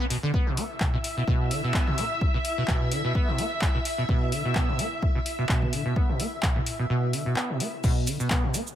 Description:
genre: acid house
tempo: 128 BPM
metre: 4/4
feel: swing 55% on 16ths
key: unclear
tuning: A4 = 440 Hz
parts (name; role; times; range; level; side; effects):
- acid bass, saw; riff; 0.0-8.6 s; B2 to B3; -28 LUFS; right 1 dB; tube saturation, lush chorus, sidechain pumping, ping-pong delay
- punchy analog drum machine; drums; 0.1-8.8 s; crash cymbal, handclaps, hi-hat, shaker, toms; -31 LUFS; equal; none
- string machine, full ensemble; sustained chords; 0.6-7.8 s; E5; -32 LUFS; left 1 dB; ensemble chorus, sidechain pumping
- electronic kick drum; drums; 0.3-8.4 s; none; -26 LUFS; equal; none
room: light reverb, digital ambience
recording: none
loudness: -23 LUFS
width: side -11 dB against mid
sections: 0.0-7.8 A section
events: kick drops out 6.9-7.8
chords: 0.0 Asus2 (rootless); 7.8 N.C.

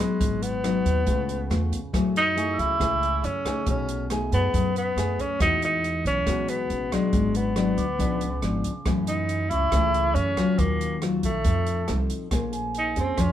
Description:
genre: bossa nova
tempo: 139 BPM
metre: 4/4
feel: straight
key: unclear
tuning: A4 = 445 Hz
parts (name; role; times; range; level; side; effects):
- breathy tenor saxophone; melody; 0.0-13.3 s; G#3 to E4; -26 LUFS; equal; none
- nylon-string guitar; accompaniment; 0.0-13.3 s; F#2 to C5; -28 LUFS; left 2 dB; none
- vibraphone with soft mallets; accompaniment; 0.0-13.3 s; Ab5 to E6; -34 LUFS; right 5 dB; none
- upright bass; bass; 0.2-13.3 s; G#1 to F#2; -28 LUFS; right 1 dB; none
- open jazz drum kit; drums; 0.2-13.3 s; hi-hat, kick drum, rim click; -30 LUFS; equal; none
room: moderate studio reverb, RT60 0.6 s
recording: band playing live in one room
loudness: -22 LUFS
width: side -11 dB against mid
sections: 0.0-12.3 A section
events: none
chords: 0.2 G#m7; 1.1 C#7alt; 1.9 F#m9; 3.7 B13; 5.4 Emaj9; 7.1 G#m7b5; 8.0 C#7b9; 8.9 F#m7; 10.6 D#m9; 11.5 F7; 12.3 Bbm9

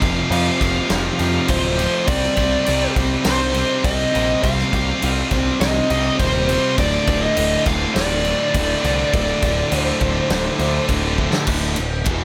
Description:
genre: hard rock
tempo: 102 BPM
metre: 4/4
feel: straight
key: D phrygian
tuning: A4 = 440 Hz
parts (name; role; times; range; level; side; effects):
- dark smooth lead guitar; melody; 0.0-10.9 s; C5 to F5; -24 LUFS; equal; overdrive, plate reverb
- overdriven tonewheel organ; sustained chords; 0.0-11.4 s; D3 to C5; -36 LUFS; equal; none
- high-gain distorted guitar; riff; 0.0-12.2 s; D2 to C4; -27 LUFS; equal; distortion
- sludgy distorted guitar; riff; 0.0-12.2 s; D2 to C4; -26 LUFS; equal; overdrive
- growling picked electric bass; bass; 0.0-12.2 s; D1 to F2; -26 LUFS; equal; overdrive
- big rock drum kit; drums; 0.0-12.2 s; crash cymbal, kick drum, ride cymbal, snare drum; -25 LUFS; equal; none
room: light reverb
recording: none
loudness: -19 LUFS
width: mono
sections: 0.0-11.5 A section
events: drum fill 11.2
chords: 0.0 F5; 2.1 Cm; 6.8 D5

